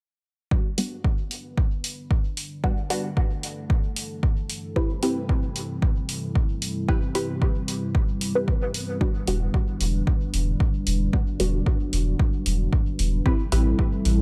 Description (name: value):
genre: dub techno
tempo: 113 BPM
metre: 4/4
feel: straight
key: E minor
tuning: A4 = 440 Hz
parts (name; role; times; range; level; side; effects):
- dark analog pad; sustained chords; 0.5-14.2 s; G3 to B4; -33 LUFS; equal; chorus, sidechain pumping
- filtered dub chord stab; stabs; 0.5-13.8 s; G3 to B4; -31 LUFS; equal; phaser, sidechain pumping, dub echo
- electronic kick drum; drums; 0.5-13.9 s; none; -25 LUFS; equal; none
- electronic hi-hat; drums; 0.8-14.2 s; none; -33 LUFS; equal; none
- soft dub sub bass; bass; 9.3-14.2 s; E1 to A1; -25 LUFS; equal; sidechain pumping
room: little or no reverb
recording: none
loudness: -25 LUFS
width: mono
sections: 0.5-14.2 A section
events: filter sweep on analog synth pad 0.5-14.2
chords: 0.5 Em7; 4.8 Am7; 9.0 Em7; 13.3 Am7